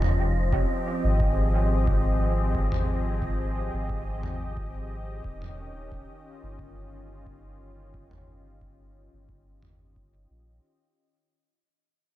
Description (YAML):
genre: ambient dub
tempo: 89 BPM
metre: 4/4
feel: straight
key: unclear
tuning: A4 = 438 Hz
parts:
  - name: warm analog pad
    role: sustained chords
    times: 0.0-10.6 s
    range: Eb3 to Eb5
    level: -33 LUFS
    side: left 1 dB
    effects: wide subtle chorus
  - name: soft dub sub bass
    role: bass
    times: 0.0-10.6 s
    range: Eb1 to Bb1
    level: -27 LUFS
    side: equal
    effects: none
  - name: electronic toms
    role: drums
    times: 0.0-9.8 s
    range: none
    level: -32 LUFS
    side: equal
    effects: none
  - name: wind-like tuned noise texture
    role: texture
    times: 0.0-10.7 s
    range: Eb5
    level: -37 LUFS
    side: right 2 dB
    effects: built-in reverb
  - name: electronic kick drum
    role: drums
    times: 0.5-10.1 s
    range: none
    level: -32 LUFS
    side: equal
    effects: none
room: little or no reverb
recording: none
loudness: -24 LUFS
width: side -14 dB against mid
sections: 0.0-10.6 A section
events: fade-out 0.0-10.6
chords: 0.0 Fm9; 5.2 Eb9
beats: 0.52 1.20 1.87 | 2.54 3.22 3.89 4.57 | 5.24 5.92 6.59 7.26 | 7.94 8.61 9.29 9.96